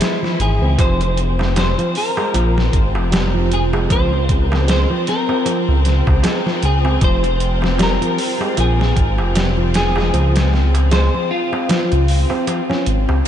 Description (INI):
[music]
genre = trip hop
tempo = 77 BPM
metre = 4/4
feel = swing 57% on 16ths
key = unclear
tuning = A4 = 436 Hz
[part]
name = clean electric guitar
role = melody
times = 0.0-12.8 s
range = F4 to C5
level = -23 LUFS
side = left 1 dB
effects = ensemble chorus, dub echo
[part]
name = rich symphonic string section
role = sustained chords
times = 0.0-13.3 s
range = E3 to E4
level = -25 LUFS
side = left 4 dB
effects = none
[part]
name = nylon-string guitar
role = arpeggios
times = 0.0-13.2 s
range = F3 to Db4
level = -23 LUFS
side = right 2 dB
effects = ping-pong delay
[part]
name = trip hop sampler-style drum kit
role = drums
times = 0.0-13.3 s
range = hi-hat, kick drum, snare drum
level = -21 LUFS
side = equal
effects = low-pass filter on hats, low-pass filter on snare, low-pass filter on kick, low-pass filter on room
[part]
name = dark detuned saw bass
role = bass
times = 0.4-13.2 s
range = F1 to Db2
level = -16 LUFS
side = equal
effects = none
[part]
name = darbuka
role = percussion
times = 0.8-13.2 s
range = none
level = -30 LUFS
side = right 2 dB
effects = none
[part]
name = bowed-like drone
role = texture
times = 1.9-13.3 s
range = F4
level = -30 LUFS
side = right 4 dB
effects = built-in reverb, phaser
[sound]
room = moderate huge ambient reverb, RT60 5.1 s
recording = dreamy mix soaked in reverb, nothing above 10.8 kHz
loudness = -14 LUFS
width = side -10 dB against mid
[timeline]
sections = 0.0-13.3 A section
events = kick drops out 11.7-13.3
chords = 0.0 Dbmaj7; 0.8 Fmadd9; 3.9 Dbmaj7; 7.0 Fmadd9; 10.1 Dbmaj7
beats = 0.01 | 0.78 1.56 2.34 3.12 | 3.90 4.68 5.46 6.24 | 7.02 7.80 8.58 9.36 | 10.13 10.91 11.69 12.47 | 13.25